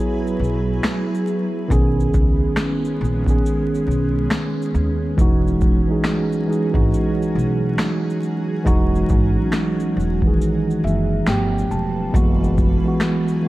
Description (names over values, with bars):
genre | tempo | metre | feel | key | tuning
lo-fi hip hop | 69 BPM | 4/4 | swing 64% on 16ths | unclear | A4 = 442 Hz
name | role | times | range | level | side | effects
mellow tine electric piano | accompaniment | 0.0-13.5 s | D#3 to A5 | -20 LUFS | right 1 dB | slow stereo tremolo, cassette tape
granular cloud pad | sustained chords | 0.0-13.5 s | F#3 to B4 | -28 LUFS | equal | built-in reverb
booming analog drum machine | drums | 0.3-13.4 s | finger snaps, hi-hat, kick drum, shaker, snare drum | -20 LUFS | equal | overdrive
upright bass | bass | 0.4-12.8 s | E1 to D#2 | -22 LUFS | equal | none
room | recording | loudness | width
light reverb | dark, warm production, vinyl crackle | -17 LUFS | side -17 dB against mid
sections
0.0-13.5 A section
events
break 3.4-5.2; tine electric piano fill 10.4-12.1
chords
0.0 F#9sus4; 1.7 B69; 5.2 Emaj9; 11.3 G9; 12.1 F#9sus4